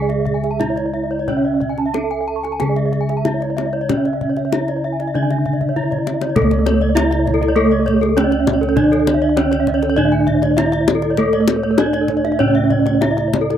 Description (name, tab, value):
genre	Balinese gamelan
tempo	89-100 BPM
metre	4/4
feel	straight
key	C# pelog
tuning	A4 = 440 Hz
part	gamelan-type bronze metallophone	melody	0.0-13.6 s	A3 to A4	-19 LUFS	right 3 dB	none
part	gamelan-type bronze metallophone	accompaniment	0.0-13.6 s	C#3 to A3	-27 LUFS	right 2 dB	none
part	gamelan-type bronze metallophone	arpeggios	0.0-13.6 s	G#4 to C#6	-25 LUFS	right 9 dB	none
part	gamelan-type bossed gongs	bass	0.0-13.6 s	C#2 to C#5	-21 LUFS	left 1 dB	none
part	gamelan-type bronze metallophone	arpeggios	0.1-13.5 s	A4 to A5	-22 LUFS	left 6 dB	none
part	kendang	percussion	0.1-13.6 s	none	-23 LUFS	left 7 dB	none
room	little or no reverb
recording	dry, close 1970s-style studio recording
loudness	-14 LUFS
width	side -9 dB against mid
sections	0.0-6.4 A section; 6.4-13.6 B section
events	drum fill 5.6-6.4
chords	none